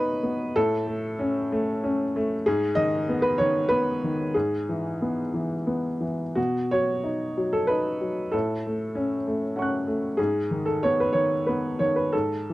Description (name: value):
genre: neoclassical minimalist piano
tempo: 82-100 BPM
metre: 3/4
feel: rubato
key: unclear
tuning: A4 = 440 Hz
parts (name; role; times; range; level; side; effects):
- warm upright piano; solo; 0.0-12.5 s; G#2 to F#6; -23 LUFS; equal; none
room: light reverb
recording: dry, close 1970s-style studio recording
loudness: -23 LUFS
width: side -17 dB against mid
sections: 0.0-12.5 A section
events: none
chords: 0.0 Badd9; 0.6 A; 2.5 G#m; 4.3 E/G#; 6.4 Badd9; 8.3 F#m/A; 10.2 G#m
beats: | 0.56 1.20 1.84 | 2.46 3.06 3.69 | 4.34 5.00 5.67 | 6.37 7.05 7.70 | 8.33 8.95 9.56 | 10.18 10.81 11.45 | 12.12